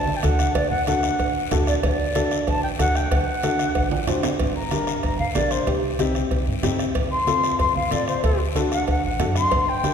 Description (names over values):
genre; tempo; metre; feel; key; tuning
latin, cumbia; 187 BPM; 4/4; straight; G minor from 4.4 s; A4 = 440 Hz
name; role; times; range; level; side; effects
mellow jazz flute; melody; 0.0-9.9 s; G4 to C6; -24 LUFS; left 2 dB; none
upright bass; bass; 0.0-9.9 s; G1 to A2; -27 LUFS; right 1 dB; none
congas; percussion; 0.1-9.9 s; none; -31 LUFS; right 3 dB; none
warm upright piano; accompaniment; 0.2-9.9 s; C4 to C5; -26 LUFS; left 2 dB; none
bombo; percussion; 0.2-9.9 s; none; -28 LUFS; equal; none
cowbell and timbales; percussion; 0.2-9.9 s; none; -30 LUFS; right 4 dB; none
guiro; percussion; 0.2-9.9 s; none; -35 LUFS; left 6 dB; none
room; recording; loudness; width
wet concert hall reverb, RT60 2.0 s; recorded in a church or concert hall; -19 LUFS; side -7 dB against mid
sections
0.0-4.4 A section; 4.4-9.9 B section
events
drum fill 3.9-4.4; flute solo 4.4-9.9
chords
0.0 D; 4.4 Gm; 5.7 Cm; 7.0 F; 8.2 D